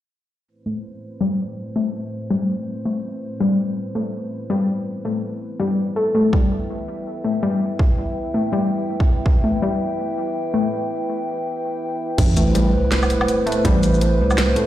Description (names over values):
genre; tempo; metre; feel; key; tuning
half-time drum and bass; 164 BPM; 4/4; swing 60% on 16ths, half-time; A minor; A4 = 440 Hz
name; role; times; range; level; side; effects
dark analog pad; sustained chords; 0.5-14.7 s; A3 to G5; -24 LUFS; equal; chorus, vintage 12-bit sampler grit, sidechain pumping
warbly dusty pluck; arpeggios; 0.7-14.7 s; G3 to A4; -22 LUFS; left 2 dB; chorus, dub echo
electronic kick drum; drums; 6.3-9.3, 12.2-13.7 s; none; -17 LUFS; right 1 dB; none
growling 808-style bass; bass; 12.2-14.6 s; A1 to C2; -19 LUFS; right 1 dB; none
drum and bass drum kit; drums; 12.2-14.7 s; crash cymbal, hi-hat, shaker, snare drum, woodblock; -24 LUFS; equal; overdrive
sub drop; sound effects; 12.2-13.6 s; none; -25 LUFS; right 2 dB; none
room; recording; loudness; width
moderate digital room reverb, RT60 1.2 s; played on a big sound system in a bare room, stone room reverb; -18 LUFS; side -13 dB against mid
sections
0.5-12.2 A section; 12.2-14.7 B section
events
filter sweep on analog synth pad 0.5-12.2; filter sweep on synth pluck 0.5-12.2; break 10.7-12.2; drop 12.2-14.7; impact 12.2-13.6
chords
0.5 Amadd9; 6.3 Em; 12.2 Amadd9